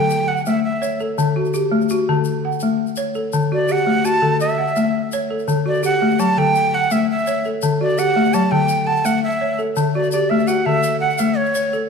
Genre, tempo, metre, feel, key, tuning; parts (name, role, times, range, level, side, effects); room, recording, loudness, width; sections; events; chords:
west african traditional, West African string and xylophone music; 112 BPM (dotted quarters); 12/8; straight; D major; A4 = 442 Hz
breathy bright jazz flute; melody; 0.0-11.8 s; C#5 to A5; -20 LUFS; right 2 dB
balafon; arpeggios; 0.0-11.9 s; D3 to F#5; -18 LUFS; left 2 dB
tube shaker; percussion; 0.1-11.8 s; -36 LUFS; left 6 dB
wet recital hall reverb, RT60 1.7 s; dark, warm production; -16 LUFS; side -5 dB against mid
0.0-11.9 A section
0.1 A; 1.2 D; 2.3 A; 3.3 D; 4.4 A; 5.5 D; 6.6 A; 7.6 D; 8.7 A; 9.8 D; 10.8 A